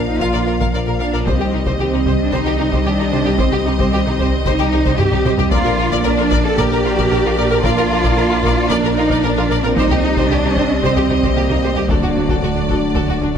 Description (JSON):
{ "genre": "cinematic, hybrid orchestral and electronic film score", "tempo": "113 BPM", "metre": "4/4", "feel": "straight", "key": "unclear", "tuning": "A4 = 442 Hz", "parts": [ { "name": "clear symphonic violin section", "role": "melody", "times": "0.0-13.4 s", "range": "D5 to F5", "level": "-26 LUFS", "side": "left 3 dB", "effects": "none" }, { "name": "hollow soft pad", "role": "sustained chords", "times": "0.0-13.4 s", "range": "D3 to D5", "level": "-22 LUFS", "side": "right 1 dB", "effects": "chorus" }, { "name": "mellow French horn section", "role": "sustained chords", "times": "0.0-13.4 s", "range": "Eb3 to F4", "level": "-25 LUFS", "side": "left 4 dB", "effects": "none" }, { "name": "thumb-piano-like synth pluck", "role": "arpeggios", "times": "0.0-13.4 s", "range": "C3 to Bb4", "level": "-26 LUFS", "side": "right 4 dB", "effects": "none" }, { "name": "dark symphonic cello section", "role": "bass", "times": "0.0-13.4 s", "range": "A3 to A4", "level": "-20 LUFS", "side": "right 2 dB", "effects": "none" }, { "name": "pure sine sub bass", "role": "bass", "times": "0.0-13.4 s", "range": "D1 to C2", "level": "-24 LUFS", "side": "left 1 dB", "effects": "none" }, { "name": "clear chamber violin section", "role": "second line", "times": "0.2-13.4 s", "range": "D4 to F5", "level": "-24 LUFS", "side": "left 3 dB", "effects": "none" }, { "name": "rich symphonic viola section", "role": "accompaniment", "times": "0.2-13.4 s", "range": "F#4 to Bb4", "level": "-25 LUFS", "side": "right 1 dB", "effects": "none" }, { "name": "warm symphonic double bass section", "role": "bass", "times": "0.2-13.4 s", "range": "Bb1 to D2", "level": "-24 LUFS", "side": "right 4 dB", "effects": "none" }, { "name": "taiko ensemble", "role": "drums", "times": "0.2-13.4 s", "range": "none", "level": "-23 LUFS", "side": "left 1 dB", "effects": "none" } ], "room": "moderate scoring stage reverb, RT60 1.7 s", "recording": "none", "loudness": "-14 LUFS", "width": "side -8 dB against mid", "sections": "0.0-13.4 A section", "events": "drum fill 5.0-5.5", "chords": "0.0 Bb; 1.3 Cm; 5.5 Bb; 9.8 Cm; 11.9 D" }